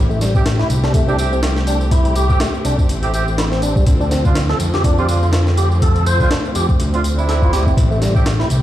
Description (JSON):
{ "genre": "breakbeat, breaks", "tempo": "123 BPM", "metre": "4/4", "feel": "swing 57% on 16ths", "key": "A minor", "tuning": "A4 = 438 Hz", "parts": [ { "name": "dark symphonic string section", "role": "sustained chords", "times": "0.0-8.6 s", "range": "D3 to G4", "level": "-25 LUFS", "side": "equal", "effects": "sidechain pumping" }, { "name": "fat analog bass", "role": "bass", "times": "0.0-8.6 s", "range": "A1 to F2", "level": "-17 LUFS", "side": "equal", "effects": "none" }, { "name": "tonewheel organ", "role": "riff", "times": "0.1-8.5 s", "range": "G3 to C5", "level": "-22 LUFS", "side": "equal", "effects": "overdrive, fast rotary speaker, ping-pong delay" }, { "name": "tambourine", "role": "drums", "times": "0.1-8.6 s", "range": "none", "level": "-32 LUFS", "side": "right 1 dB", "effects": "none" }, { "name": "breakbeat sampler-style drum kit", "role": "drums", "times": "0.2-8.6 s", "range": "hi-hat, kick drum, snare drum", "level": "-18 LUFS", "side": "equal", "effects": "none" }, { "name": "mellow horn section", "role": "stabs", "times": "0.3-8.2 s", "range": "A3 to G4", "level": "-25 LUFS", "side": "right 4 dB", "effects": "vintage 12-bit sampler grit, ping-pong delay" } ], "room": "digital ambience", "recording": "played on a big sound system in a bare room, stone room reverb", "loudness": "-13 LUFS", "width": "side -13 dB against mid", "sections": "0.0-8.6 A section", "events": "none", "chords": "0.0 Am7; 3.9 Dm7; 7.8 Am7" }